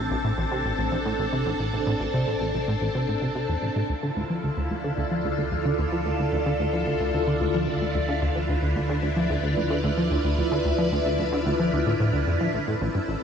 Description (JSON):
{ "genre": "ambient, sequencer-driven space music", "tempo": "111 BPM", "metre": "4/4", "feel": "straight", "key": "D dorian", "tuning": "A4 = 441 Hz", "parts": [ { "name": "phased string machine", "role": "sustained chords", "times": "0.0-13.2 s", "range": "D3 to B4", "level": "-26 LUFS", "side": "equal", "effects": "ensemble chorus, phaser" }, { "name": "plucky analog bass", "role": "riff", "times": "0.0-13.2 s", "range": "A1 to F3", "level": "-26 LUFS", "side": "equal", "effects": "lush chorus, tape echo" }, { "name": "warm sub bass", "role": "bass", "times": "0.0-13.2 s", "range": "A1 to D2", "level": "-33 LUFS", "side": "equal", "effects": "none" }, { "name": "wind-like tuned noise texture", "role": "texture", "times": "0.0-3.9 s", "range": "A5", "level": "-36 LUFS", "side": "equal", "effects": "built-in reverb" } ], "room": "wet huge ambient reverb, RT60 8.9 s", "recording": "none", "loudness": "-23 LUFS", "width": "side -7 dB against mid", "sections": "0.0-3.9 A section; 3.9-13.2 A section", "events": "none", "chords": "0.0 Am; 3.9 Dmadd9; 12.5 Am", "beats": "0.11 0.65 1.19 | 1.73 2.27 2.81 3.35 | 3.89 4.43 4.97 5.52 | 6.06 6.60 7.14 7.68 | 8.22 8.76 9.30 9.84 | 10.38 10.92 11.46 12.00 | 12.54 13.08" }